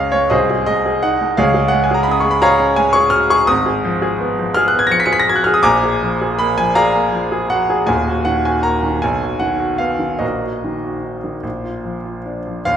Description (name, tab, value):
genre	classical, romantic character piece for solo piano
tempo	48-58 BPM (dotted quarters)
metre	6/8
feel	rubato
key	unclear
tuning	A4 = 440 Hz
part	warm grand piano	solo	0.0-12.8 s	Eb1 to Db7	-14 LUFS	equal	none
room	wet recital hall reverb, RT60 1.8 s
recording	recorded in a church or concert hall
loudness	-14 LUFS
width	side -9 dB against mid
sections	0.0-12.7 A section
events	none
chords	0.3 G#/B#; 1.4 C#; 3.5 Fdim/Ab; 5.6 Bb7; 7.9 Ebm; 9.0 B; 10.2 Ebm/Bb; 11.4 Bb